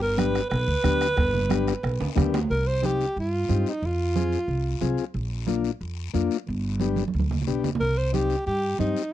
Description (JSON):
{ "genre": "latin, cumbia", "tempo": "181 BPM", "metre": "4/4", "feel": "straight", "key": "C minor", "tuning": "A4 = 440 Hz", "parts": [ { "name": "breathy alto saxophone", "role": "melody", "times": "0.0-4.8, 7.8-9.1 s", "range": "Eb4 to C5", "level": "-26 LUFS", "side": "right 1 dB", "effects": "none" }, { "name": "upright bass", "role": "bass", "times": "0.0-8.9 s", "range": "G1 to G2", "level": "-26 LUFS", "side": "right 1 dB", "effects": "none" }, { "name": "combo organ", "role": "accompaniment", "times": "0.2-9.0 s", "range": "Bb3 to Ab4", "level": "-27 LUFS", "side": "left 9 dB", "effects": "none" }, { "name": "bombo", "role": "percussion", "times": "0.2-2.5 s", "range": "none", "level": "-27 LUFS", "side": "right 2 dB", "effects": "none" }, { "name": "congas", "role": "percussion", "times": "0.2-9.0 s", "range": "none", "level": "-31 LUFS", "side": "right 6 dB", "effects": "none" }, { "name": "guiro", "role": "percussion", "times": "0.2-9.1 s", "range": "none", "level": "-42 LUFS", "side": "left 19 dB", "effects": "none" }, { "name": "cowbell and timbales", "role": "percussion", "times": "0.5-2.4 s", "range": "none", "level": "-33 LUFS", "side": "right 4 dB", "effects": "none" } ], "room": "little or no reverb", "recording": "dry, close 1970s-style studio recording", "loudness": "-22 LUFS", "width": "side -12 dB against mid", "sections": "0.0-2.5 A section; 2.5-9.1 B section", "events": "drum fill 2.0-2.5, 7.0-7.8", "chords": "0.0 G; 2.5 Cm; 3.8 Fm; 5.2 Bb; 6.5 G; 7.8 Cm" }